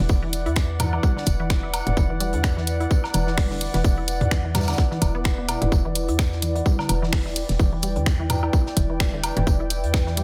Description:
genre	minimal techno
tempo	128 BPM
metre	4/4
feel	swing 56% on 16ths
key	E minor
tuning	A4 = 440 Hz
part	resonant blip pluck	riff	0.0-10.2 s	B2 to E4	-33 LUFS	equal	chorus, sidechain pumping, tape echo
part	hollow knocking FM bass	bass	0.0-10.2 s	E1 to E2	-28 LUFS	equal	sidechain pumping
part	warbly tape-like pad	texture	0.0-10.2 s	E4 to G5	-32 LUFS	equal	chorus, built-in reverb, sidechain pumping
part	electronic kick drum	drums	0.1-10.0 s	none	-24 LUFS	equal	studio reverb
part	natural country drum kit	drums	0.1-10.2 s	hi-hat, snare drum, tambourine	-40 LUFS	equal	sidechain pumping on hats, high-pass filter on hats, studio reverb, high-pass filter on snare, sidechain pumping on perc, high-pass filter on perc, high-pass filter on room
part	garage drum kit	drums	0.3-10.2 s	finger snaps, hi-hat	-30 LUFS	equal	studio reverb
part	electronic toms and woodblock	percussion	0.8-9.4 s	none	-30 LUFS	equal	overdrive, studio reverb
room	light reverb, digital ambience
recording	none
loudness	-22 LUFS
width	mono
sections	0.0-10.2 A section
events	none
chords	0.0 Em7

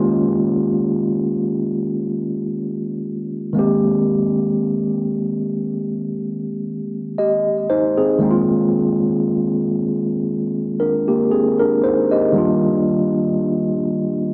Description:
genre	R&B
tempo	58 BPM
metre	4/4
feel	swing 54% on 16ths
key	unclear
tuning	A4 = 441 Hz
part	tine electric piano	solo	0.0-14.3 s	Eb3 to Eb5	-19 LUFS	equal	tape echo
room	moderate studio ambience, RT60 0.5 s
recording	home recording on cassette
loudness	-19 LUFS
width	mono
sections	0.0-14.3 A section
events	none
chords	0.0 Db6; 3.6 Abmaj7; 8.2 Bb9sus4; 12.3 Ebmaj9

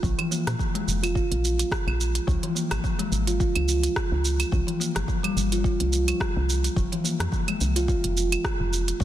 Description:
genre	organic downtempo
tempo	107 BPM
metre	4/4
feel	swing 55% on 16ths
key	F harmonic minor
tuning	A4 = 440 Hz
part	kalimba	arpeggios	0.0-9.0 s	E3 to F4	-27 LUFS	equal	low-pass filter, digital delay
part	woody FM bass	bass	0.0-9.0 s	F1 to Bb2	-26 LUFS	equal	tube saturation, sidechain pumping
part	afro-pop drum kit	drums	0.0-9.0 s	claves, hi-hat, rim click, shaker	-30 LUFS	right 2 dB	soft clipping on snare
part	electronic kick drum	drums	0.0-9.0 s	none	-27 LUFS	equal	none
room	light reverb, digital ambience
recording	dense, heavily limited modern master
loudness	-22 LUFS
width	side -12 dB against mid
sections	0.0-9.0 A section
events	filter sweep on kalimba 0.0-9.0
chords	0.0 Bb5; 2.3 Db; 4.5 Csus4; 6.8 F5

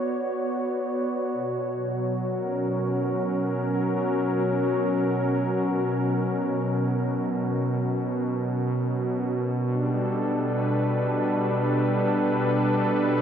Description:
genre	ambient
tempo	free time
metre	none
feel	none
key	unclear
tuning	A4 = 441 Hz
part	warm analog pad	solo	0.0-13.2 s	B2 to D5	-23 LUFS	equal	chorus, ping-pong delay
room	wet huge ambient reverb, RT60 8.4 s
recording	none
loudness	-23 LUFS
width	side -8 dB against mid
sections	0.0-13.2 A section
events	none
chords	0.0 Bmadd9; 1.3 F#/B; 9.5 Gmaj9/B

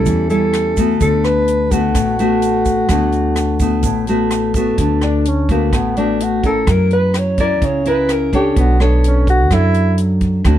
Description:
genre	bossa nova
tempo	127 BPM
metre	4/4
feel	straight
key	D major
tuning	A4 = 441 Hz
part	mellow alto saxophone	melody	0.0-10.0 s	A3 to D5	-18 LUFS	equal	none
part	nylon-string guitar	accompaniment	0.0-10.6 s	A2 to C#5	-17 LUFS	left 1 dB	none
part	upright bass	bass	0.0-10.6 s	A1 to F#2	-18 LUFS	right 1 dB	none
part	compact cocktail drum kit	drums	0.1-10.6 s	hi-hat, kick drum, rim click	-22 LUFS	right 1 dB	none
part	egg shaker	percussion	0.1-4.8 s	none	-34 LUFS	right 12 dB	none
room	light reverb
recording	dark, warm production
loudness	-13 LUFS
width	side -11 dB against mid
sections	0.0-4.8 A section; 4.8-10.6 B section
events	alto saxophone solo 4.8-10.6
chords	0.0 A7; 1.0 D6; 6.7 F#7; 8.6 Bm9

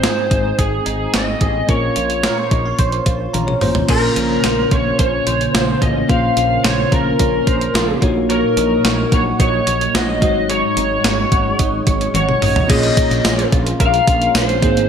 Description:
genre	1980s-style pop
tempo	109 BPM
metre	4/4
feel	straight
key	unclear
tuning	A4 = 440 Hz
part	lead guitar through a small cranked amp	melody	0.0-14.9 s	Ab4 to F5	-19 LUFS	left 1 dB	overdrive, analog chorus, digital delay
part	bell-like tine electric piano	accompaniment	0.0-14.9 s	Ab2 to Bb5	-22 LUFS	left 2 dB	wide subtle chorus
part	direct-recorded clean electric guitar	riff	0.0-14.9 s	Ab3 to Db5	-25 LUFS	right 5 dB	ensemble chorus, digital delay
part	woody fretless electric bass	bass	0.0-14.9 s	Ab1 to Bb1	-23 LUFS	equal	lush chorus
part	clean 12-bit digital drum machine	drums	0.0-14.9 s	crash cymbal, hi-hat, kick drum, snare drum, tambourine, toms	-18 LUFS	equal	overdrive, gated reverb
part	ensemble organ-string	sustained chords	3.9-14.9 s	Db3 to Eb4	-25 LUFS	equal	ensemble chorus
room	moderate plate reverb, RT60 1.5 s, digital ambience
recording	bright 1980s-style digital production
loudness	-13 LUFS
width	side -7 dB against mid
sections	0.0-3.9 A section; 3.9-12.7 B section; 12.7-14.9 C section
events	tine electric piano fill 3.1-3.9; drum fill 3.3-3.9, 12.1-12.7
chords	0.0 Ab; 1.7 Bbmadd9; 8.0 Gb6/Bb; 10.2 Ab7sus4; 12.7 Bbm7

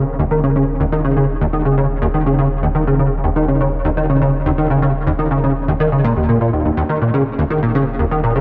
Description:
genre	ambient, sequencer-driven space music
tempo	123 BPM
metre	4/4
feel	straight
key	unclear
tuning	A4 = 439 Hz
part	plucky analog bass	riff	0.0-8.4 s	Eb2 to Eb3	-17 LUFS	equal	ensemble chorus, tape echo
part	warm sub bass	bass	0.0-8.4 s	Eb1	-27 LUFS	equal	none
room	wet concert hall reverb, RT60 2.5 s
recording	none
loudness	-16 LUFS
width	mono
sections	0.0-8.4 A section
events	none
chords	0.0 Eb5

